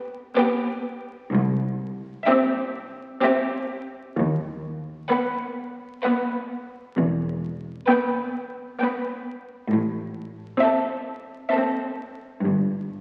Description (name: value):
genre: classical, slow romantic movement for string orchestra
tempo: 65 BPM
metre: 3/4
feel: rubato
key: E minor, A minor from 9.7 s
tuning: A4 = 440 Hz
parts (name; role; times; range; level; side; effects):
- warm chamber violin section; melody; 0.0-12.2 s; B4 to G5; -31 LUFS; equal; none
- rich symphonic violin section; second line; 0.0-12.2 s; G4 to B4; -32 LUFS; equal; none
- rich chamber viola section; accompaniment; 0.0-12.2 s; B3 to C4; -27 LUFS; equal; none
- clear chamber double bass section; bass; 1.3-13.0 s; E1 to D#2; -32 LUFS; equal; none
- rich chamber cello section; bass; 1.3-13.0 s; C2 to A2; -27 LUFS; equal; none
room: wet scoring stage reverb, RT60 1.8 s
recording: very old 78 rpm record, vinyl crackle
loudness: -25 LUFS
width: mono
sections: 0.0-13.0 A section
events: none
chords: 0.0 Em (rootless); 1.3 C; 4.2 B/D#; 7.0 Em; 9.7 Am; 12.4 N.C.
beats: 0.37 | 1.33 2.28 3.24 | 4.17 5.10 6.03 | 6.96 7.90 8.81 | 9.72 10.62 11.53 | 12.44